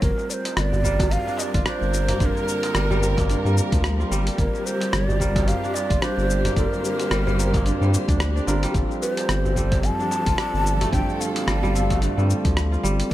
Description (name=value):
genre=organic downtempo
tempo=110 BPM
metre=4/4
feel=swing 57% on 16ths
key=G minor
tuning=A4 = 439 Hz
part: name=breathy mellow ney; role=melody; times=0.0-13.1 s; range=Bb4 to A5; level=-27 LUFS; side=equal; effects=ping-pong delay
part: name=bell-like tine electric piano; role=accompaniment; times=0.0-13.1 s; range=G3 to Bb4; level=-30 LUFS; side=right 3 dB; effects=sidechain pumping, ping-pong delay
part: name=dark studio string section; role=sustained chords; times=0.0-13.1 s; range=F3 to C5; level=-31 LUFS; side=left 1 dB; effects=sidechain pumping
part: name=kora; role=arpeggios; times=0.0-13.1 s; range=D3 to F4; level=-29 LUFS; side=right 1 dB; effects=ping-pong delay
part: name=round analog bass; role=bass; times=0.0-13.1 s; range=G1 to G2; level=-22 LUFS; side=equal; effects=none
part: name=dusty soul sampler-style drum kit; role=drums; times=0.0-13.1 s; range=hi-hat, rim click, shaker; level=-29 LUFS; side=left 1 dB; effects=none
part: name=electronic kick drum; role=drums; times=0.0-13.1 s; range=none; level=-24 LUFS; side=equal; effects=none
part: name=darbuka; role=percussion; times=0.2-12.0 s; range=none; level=-32 LUFS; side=right 1 dB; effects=none
room=light reverb, small room ambience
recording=none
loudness=-19 LUFS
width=side -14 dB against mid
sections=0.0-13.1 A section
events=none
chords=0.0 Gm7